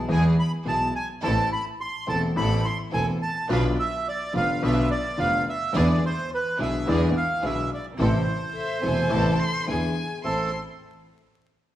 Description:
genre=tango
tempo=106 BPM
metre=4/4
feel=rubato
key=A harmonic minor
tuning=A4 = 440 Hz
part: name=warm concert grand piano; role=accompaniment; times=0.0-10.5 s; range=E1 to A4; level=-25 LUFS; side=left 1 dB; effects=none
part: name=clear studio string section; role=stabs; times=0.0-10.5 s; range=B3 to B4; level=-34 LUFS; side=right 2 dB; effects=none
part: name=clear double bass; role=bass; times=0.0-10.5 s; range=E1 to E2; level=-28 LUFS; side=right 1 dB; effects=none
part: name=bandoneon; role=melody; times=0.1-10.5 s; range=A4 to C6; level=-27 LUFS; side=right 2 dB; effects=none
part: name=vibraphone with soft mallets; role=second line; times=8.5-10.5 s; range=G#4 to C5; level=-32 LUFS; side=right 1 dB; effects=none
part: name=rich violin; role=second line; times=8.6-10.5 s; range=E5 to C6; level=-31 LUFS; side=left 3 dB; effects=none
room=wet recital hall reverb, RT60 1.4 s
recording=recorded in a church or concert hall, vinyl crackle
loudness=-22 LUFS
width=side -13 dB against mid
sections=0.0-10.2 A section; 10.2-11.8 B section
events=none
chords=0.0 E; 1.2 Am; 3.5 Bdim; 5.7 E7; 8.0 Am; 9.7 E7; 10.2 Am

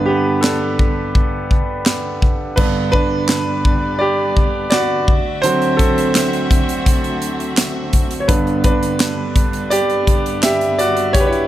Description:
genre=piano-driven pop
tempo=84 BPM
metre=4/4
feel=straight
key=unclear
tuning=A4 = 442 Hz
part: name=clear concert grand piano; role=accompaniment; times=0.0-11.5 s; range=G2 to E5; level=-17 LUFS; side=right 1 dB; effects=none
part: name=modern studio drum kit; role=drums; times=0.4-11.5 s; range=crash cymbal, handclaps, hi-hat, kick drum, snare drum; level=-17 LUFS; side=equal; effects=none
part: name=warm studio string section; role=sustained chords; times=2.6-11.5 s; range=D2 to E5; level=-26 LUFS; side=left 3 dB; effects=none
room=light reverb, small room ambience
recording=none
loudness=-14 LUFS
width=side -13 dB against mid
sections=0.0-2.6 A section; 2.6-11.5 B section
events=grand piano solo 0.0-2.6, 2.6-11.5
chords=0.0 Gadd9; 2.6 G; 5.1 D7; 8.3 G

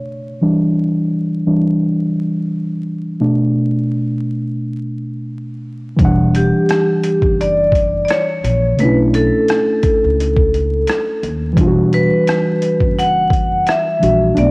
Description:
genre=lo-fi hip hop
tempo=86 BPM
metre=4/4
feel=swing 60% on 16ths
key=E dorian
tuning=A4 = 440 Hz
part: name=mellow reed electric piano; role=accompaniment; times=0.0-14.5 s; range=B2 to F#5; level=-16 LUFS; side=equal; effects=low-pass filter, cassette tape
part: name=upright bass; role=bass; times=6.0-14.5 s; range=E1 to D#2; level=-18 LUFS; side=equal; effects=none
part: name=boom bap sampler-style drum kit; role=drums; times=6.0-14.5 s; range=hi-hat, kick drum, rim click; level=-18 LUFS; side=equal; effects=cassette tape
part: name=vibraphone with hard mallets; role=melody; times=6.4-14.5 s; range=G4 to F#5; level=-16 LUFS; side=equal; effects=low-pass filter, cassette tape
room=light reverb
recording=home recording on cassette, vinyl crackle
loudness=-13 LUFS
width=side -28 dB against mid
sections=0.0-6.0 A section; 6.0-14.5 B section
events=reed electric piano solo 0.0-6.0; filter sweep on reed electric piano 0.0-6.0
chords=0.4 Em7; 3.2 Bm7; 6.0 Em9; 8.8 Bm11; 11.6 Em9

